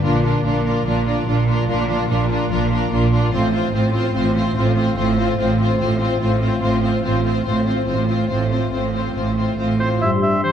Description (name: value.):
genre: cinematic, heroic adventure film score.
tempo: 145 BPM.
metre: 4/4.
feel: straight.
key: unclear.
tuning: A4 = 441 Hz.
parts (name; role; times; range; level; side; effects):
rich symphonic violin section; melody; 0.0-10.0 s; Bb4 to C5; -27 LUFS; left 3 dB; none.
warm symphonic violin section; second line; 0.0-10.0 s; F4; -26 LUFS; left 3 dB; none.
warm studio viola section; accompaniment; 0.0-10.0 s; C4 to D4; -26 LUFS; right 1 dB; none.
concert harp; arpeggios; 0.0-10.5 s; G2 to F4; -26 LUFS; left 8 dB; none.
rich symphonic cello section; bass; 0.0-10.0 s; A2 to Bb2; -22 LUFS; right 2 dB; none.
warm symphonic double bass section; bass; 0.0-10.0 s; A1 to Bb1; -22 LUFS; right 3 dB; none.
clear oboe; second line; 9.8-10.5 s; C5 to E5; -20 LUFS; right 1 dB; none.
silver concert flute; second line; 10.0-10.5 s; C6; -26 LUFS; left 5 dB; none.
warm clarinet; second line; 10.0-10.5 s; G4; -27 LUFS; left 3 dB; none.
mellow French horn section; sustained chords; 10.0-10.4 s; G3; -22 LUFS; equal; none.
room: moderate scoring stage reverb, RT60 1.6 s.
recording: dark, warm production.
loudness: -16 LUFS.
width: side -9 dB against mid.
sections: 0.0-10.0 A section.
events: build-up 0.0-10.0.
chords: 0.0 Bb; 3.3 F/A; 10.0 C/G.